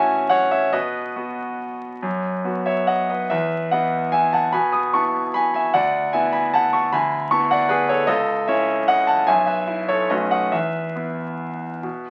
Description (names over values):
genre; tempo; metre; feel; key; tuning
classical, piano waltz; 133-160 BPM; 3/4; rubato; E major; A4 = 439 Hz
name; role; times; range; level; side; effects
bright concert grand piano; solo; 0.0-12.1 s; B1 to D#6; -21 LUFS; equal; none
room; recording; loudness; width
moderate small room ambience, RT60 0.5 s; very old 78 rpm record, vinyl crackle; -21 LUFS; mono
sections
0.0-12.1 A section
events
none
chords
0.0 F#m/A; 0.7 B; 3.3 E; 5.7 E7/D; 8.1 A/C#; 9.3 E5/B; 10.1 B9; 10.5 E5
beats
0.31 | 0.73 1.15 1.59 | 2.02 2.44 2.88 | 3.30 3.71 4.13 | 4.53 4.92 5.33 | 5.72 6.12 6.53 | 6.92 7.31 7.70 | 8.08 8.47 8.87 | 9.27 9.67 10.09 | 10.52 10.95 11.40 | 11.84